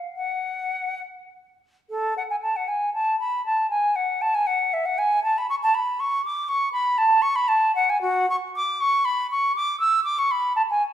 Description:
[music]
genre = classical, baroque-style fantasia for unaccompanied flute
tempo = 67-82 BPM (dotted quarters)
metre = 6/8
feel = rubato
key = A major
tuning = A4 = 440 Hz
[part]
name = silver concert flute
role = solo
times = 0.2-10.8 s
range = F#4 to E6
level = -20 LUFS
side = equal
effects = none
[sound]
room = moderate recital hall reverb, RT60 1.4 s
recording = minimal, uncompressed stereo recording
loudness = -20 LUFS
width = side -10 dB against mid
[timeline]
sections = 0.0-1.9 A section; 1.9-10.9 A section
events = none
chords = none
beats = | 0.15 1.03 | 1.90 2.69 | 3.45 4.22 | 4.98 5.74 | 6.48 7.22 | 8.02 8.79 | 9.54 10.31

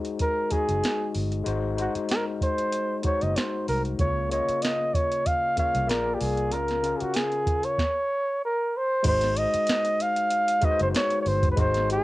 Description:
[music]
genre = lush 1970s-style soul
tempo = 95 BPM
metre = 4/4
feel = swing 54% on 16ths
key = unclear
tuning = A4 = 442 Hz
[part]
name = overdriven tine electric piano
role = accompaniment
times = 0.0-12.0 s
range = Db3 to Eb5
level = -30 LUFS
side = left 5 dB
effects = cassette tape
[part]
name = soft vintage rhythm box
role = drums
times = 0.0-12.0 s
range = crash cymbal, hi-hat, kick drum, snare drum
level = -28 LUFS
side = right 1 dB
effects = none
[part]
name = breathy flugelhorn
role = melody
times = 0.2-12.0 s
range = Gb4 to F5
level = -25 LUFS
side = right 1 dB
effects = cassette tape
[part]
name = vintage muted fingered electric bass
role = bass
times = 0.5-12.0 s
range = Gb1 to Db2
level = -29 LUFS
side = right 1 dB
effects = none
[sound]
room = light reverb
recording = home recording on cassette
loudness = -23 LUFS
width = side -18 dB against mid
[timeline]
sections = 0.0-9.0 A section; 9.0-12.0 B section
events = none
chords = 0.0 Ab7; 4.0 Db6; 5.9 Bb7; 6.5 Db6; 9.0 Ab7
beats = 0.19 0.83 | 1.46 2.09 2.73 3.36 | 3.99 4.62 5.25 5.89 | 6.52 7.15 7.78 8.42 | 9.05 9.68 10.31 10.94 | 11.57

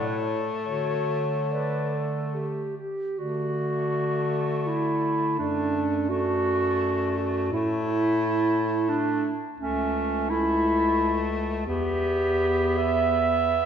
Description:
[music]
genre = classical, lyrical piece for single-reed quartet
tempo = 68-89 BPM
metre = 3/4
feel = rubato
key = D major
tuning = A4 = 440 Hz
[part]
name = warm clarinet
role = melody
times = 0.0-13.7 s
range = C#5 to E5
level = -34 LUFS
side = left 4 dB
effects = none
[part]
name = warm clarinet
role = second line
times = 0.0-13.7 s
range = C#4 to E5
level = -25 LUFS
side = right 2 dB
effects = none
[part]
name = bright tenor saxophone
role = accompaniment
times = 0.0-13.7 s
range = A3 to B3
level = -31 LUFS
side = left 3 dB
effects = none
[part]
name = warm bass clarinet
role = bass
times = 0.0-13.7 s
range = C#2 to D3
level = -30 LUFS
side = equal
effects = none
[sound]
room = wet scoring stage reverb, RT60 1.6 s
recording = recorded in a church or concert hall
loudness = -23 LUFS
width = side -8 dB against mid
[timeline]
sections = 0.0-3.2 A section; 3.2-13.7 B section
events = none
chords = 0.0 A; 0.7 D; 5.4 D/F#; 7.5 A5; 9.6 A/C#; 11.7 Em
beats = | 0.66 1.51 2.34 | 3.19 3.95 4.68 | 5.40 6.11 6.82 | 7.53 8.21 8.89 | 9.60 10.30 10.99 | 11.67 12.38 13.14

